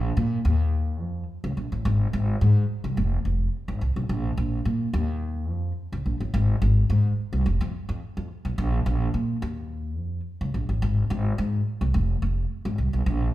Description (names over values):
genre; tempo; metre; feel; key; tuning
funk; 107 BPM; 4/4; straight; unclear; A4 = 439 Hz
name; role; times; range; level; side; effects
upright bass; solo; 0.0-13.3 s; F1 to Bb2; -23 LUFS; equal; none
room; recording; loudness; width
wet large studio reverb, RT60 1.2 s; band playing live in one room; -23 LUFS; side -15 dB against mid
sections
0.0-13.3 A section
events
none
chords
none